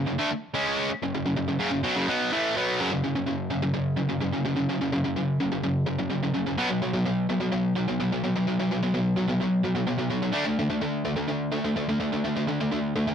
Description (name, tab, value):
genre	metal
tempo	127 BPM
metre	4/4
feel	straight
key	F# minor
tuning	A4 = 440 Hz
part	distorted electric guitar	solo	0.0-13.1 s	F#2 to D4	-24 LUFS	equal	overdrive
room	little or no reverb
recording	dark, warm production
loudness	-24 LUFS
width	side -8 dB against mid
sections	0.0-2.8 A section; 2.8-13.1 B section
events	none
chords	0.0 F#m; 2.8 F#5; 6.6 B5; 10.3 D5